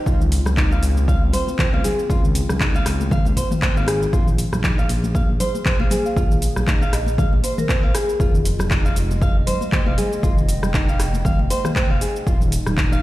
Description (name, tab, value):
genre	afro house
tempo	118 BPM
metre	4/4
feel	swing 56% on 16ths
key	F minor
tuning	A4 = 437 Hz
part	marimba with medium mallets	melody	0.0-0.1, 5.9-8.3 s	Ab4 to F5	-29 LUFS	equal	tape echo
part	dark analog pad	sustained chords	0.0-13.0 s	G3 to G5	-31 LUFS	equal	lush chorus, sidechain pumping
part	flamenco guitar	arpeggios	0.1-13.0 s	C4 to F5	-26 LUFS	equal	vintage 12-bit sampler grit, sidechain pumping, tape echo
part	smooth gliding synth bass	bass	0.1-13.0 s	Eb1 to Db2	-22 LUFS	equal	sidechain pumping
part	afro-pop drum kit	drums	0.1-13.0 s	cabasa, handclaps, hi-hat, rim click, toms	-26 LUFS	left 1 dB	small room ambience
part	electronic kick drum	drums	0.1-12.9 s	none	-20 LUFS	equal	small room ambience
part	congas	percussion	0.1-13.0 s	none	-29 LUFS	left 1 dB	none
room	light reverb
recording	played on a big sound system in a bare room, large studio reverb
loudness	-17 LUFS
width	side -16 dB against mid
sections	0.0-13.0 A section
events	none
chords	0.1 Dbmaj7; 4.1 Bb5; 8.2 Fm7; 12.3 Eb